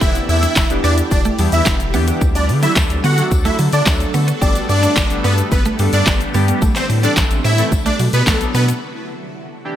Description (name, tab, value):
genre	dance-pop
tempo	109 BPM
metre	4/4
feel	straight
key	E minor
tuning	A4 = 439 Hz
part	supersaw chords	melody	0.0-8.6 s	A3 to F#5	-20 LUFS	equal	sidechain pumping, digital delay
part	chorused polysynth	accompaniment	0.0-9.8 s	E3 to A4	-24 LUFS	equal	sidechain pumping
part	shimmering ambient pad	sustained chords	0.0-8.8 s	C3 to A4	-25 LUFS	equal	chorus, built-in reverb, phaser, sidechain pumping
part	twelve-string electric guitar	riff	0.0-8.8 s	F#3 to G4	-25 LUFS	right 4 dB	wide subtle chorus
part	round analog bass	bass	0.0-8.7 s	E1 to D3	-18 LUFS	equal	sidechain pumping
part	house drum kit	drums	0.0-8.8 s	handclaps, hi-hat, kick drum, shaker, snare drum	-18 LUFS	equal	gated reverb
part	tambourine	percussion	0.0-8.8 s	none	-36 LUFS	left 9 dB	none
room	light reverb, digital ambience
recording	bright 1980s-style digital production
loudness	-13 LUFS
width	side -11 dB against mid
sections	0.0-8.8 A section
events	drop 0.0-8.8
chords	0.0 Em7; 2.2 D; 4.4 Gadd9; 6.6 Am; 7.7 Bm7; 8.8 Em7